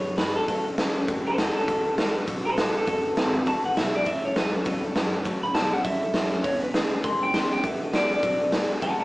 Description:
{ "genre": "rockabilly", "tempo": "202 BPM", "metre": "4/4", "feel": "swing 62% on 8ths", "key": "A major", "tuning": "A4 = 441 Hz", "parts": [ { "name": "electric guitar through a small old amp", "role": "melody", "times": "0.0-9.0 s", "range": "F#4 to C6", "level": "-26 LUFS", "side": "equal", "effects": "spring reverb" }, { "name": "picked steel-string acoustic guitar", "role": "accompaniment", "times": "0.0-9.0 s", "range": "A2 to A4", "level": "-33 LUFS", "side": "left 1 dB", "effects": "none" }, { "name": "upright bass", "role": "bass", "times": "0.0-9.0 s", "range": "F#1 to C#3", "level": "-34 LUFS", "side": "equal", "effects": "none" }, { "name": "raw garage drum kit", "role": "drums", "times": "0.2-8.9 s", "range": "hi-hat, kick drum, snare drum", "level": "-26 LUFS", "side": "equal", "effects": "none" }, { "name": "electric guitar through a small old amp", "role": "riff", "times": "4.1-9.0 s", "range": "E2 to C4", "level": "-34 LUFS", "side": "right 1 dB", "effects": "none" } ], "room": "moderate stone room reverb, RT60 1.0 s", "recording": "band playing live in one room, small speaker sound", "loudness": "-22 LUFS", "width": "side -20 dB against mid", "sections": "0.0-9.0 A section", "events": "clean electric guitar solo 0.0-9.0", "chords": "0.5 A6; 1.7 D6; 4.1 A6; 6.4 E6; 7.6 D6" }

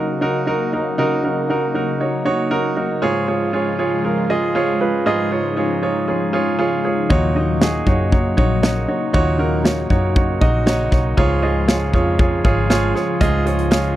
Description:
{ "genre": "piano-driven pop", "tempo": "118 BPM", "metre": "4/4", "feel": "straight", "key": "unclear", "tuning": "A4 = 440 Hz", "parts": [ { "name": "clear baby grand piano", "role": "accompaniment", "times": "0.0-14.0 s", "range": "G#2 to D#5", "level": "-18 LUFS", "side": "right 2 dB", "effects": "none" }, { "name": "lush unison pad", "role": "sustained chords", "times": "0.0-14.0 s", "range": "C#3 to E#4", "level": "-24 LUFS", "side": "left 2 dB", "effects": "chorus, phaser" }, { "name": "vintage muted fingered electric bass", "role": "bass", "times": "7.1-13.9 s", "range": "G#1 to F#2", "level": "-20 LUFS", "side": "equal", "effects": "none" }, { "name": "modern studio drum kit", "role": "drums", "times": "7.1-14.0 s", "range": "hi-hat, kick drum, snare drum", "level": "-17 LUFS", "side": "equal", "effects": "none" } ], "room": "light reverb", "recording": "dry, close 1970s-style studio recording", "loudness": "-16 LUFS", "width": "side -13 dB against mid", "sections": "0.0-14.0 A section", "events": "grand piano fill 13.7", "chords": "0.0 F#6; 3.0 C#; 7.1 D#m7; 11.2 C#" }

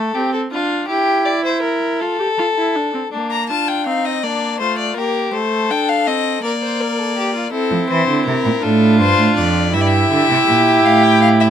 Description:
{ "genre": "classical, baroque-style fugue for string quartet", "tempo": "54 BPM (dotted quarters)", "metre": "6/8", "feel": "straight", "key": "Bb major", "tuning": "A4 = 440 Hz", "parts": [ { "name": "warm violin", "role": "second line", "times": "0.0-11.5 s", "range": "D4 to D5", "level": "-19 LUFS", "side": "left 2 dB", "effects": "none" }, { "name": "warm viola", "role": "accompaniment", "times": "0.0-11.5 s", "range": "A3 to G4", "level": "-20 LUFS", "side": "right 3 dB", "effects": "none" }, { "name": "rich violin", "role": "melody", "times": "3.3-11.5 s", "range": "A4 to Bb5", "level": "-19 LUFS", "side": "left 7 dB", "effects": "none" }, { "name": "rich cello", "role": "bass", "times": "7.7-11.5 s", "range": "F2 to F3", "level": "-16 LUFS", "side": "right 3 dB", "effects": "none" } ], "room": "little or no reverb", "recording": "close, detailed microphones", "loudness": "-14 LUFS", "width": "side -9 dB against mid", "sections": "0.0-3.1 A section; 3.1-11.5 B section", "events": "none", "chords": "0.0 F/A; 0.9 Edim; 2.0 F; 3.1 Bb; 5.3 Adim; 6.4 Bb; 7.5 F; 9.7 Edim/G; 10.8 F/A" }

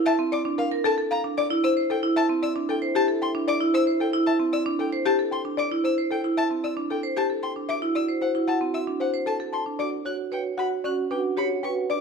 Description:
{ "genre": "classical, minimalist pattern music", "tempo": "114 BPM", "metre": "4/4", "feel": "straight", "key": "unclear", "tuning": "A4 = 440 Hz", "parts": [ { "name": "marimba with hard mallets", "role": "arpeggios", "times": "0.0-12.0 s", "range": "C4 to C#5", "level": "-25 LUFS", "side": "right 3 dB", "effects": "none" }, { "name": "buzzing marimba with medium mallets", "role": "melody", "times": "0.1-12.0 s", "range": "G4 to A5", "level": "-27 LUFS", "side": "left 6 dB", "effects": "none" }, { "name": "rich violin", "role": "arpeggios", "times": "0.1-12.0 s", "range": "F5 to F#6", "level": "-32 LUFS", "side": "left 2 dB", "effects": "none" }, { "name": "dark French horn", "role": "second line", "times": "1.4-12.0 s", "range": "E4 to F#4", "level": "-31 LUFS", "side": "right 4 dB", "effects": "none" } ], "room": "light reverb", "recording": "minimal, uncompressed stereo recording", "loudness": "-22 LUFS", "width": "side -5 dB against mid", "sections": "0.0-9.8 A section; 9.8-12.0 B section", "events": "none", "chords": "0.0 Bbmaj9; 1.4 Cadd9; 7.7 D7; 9.8 Gmaj7" }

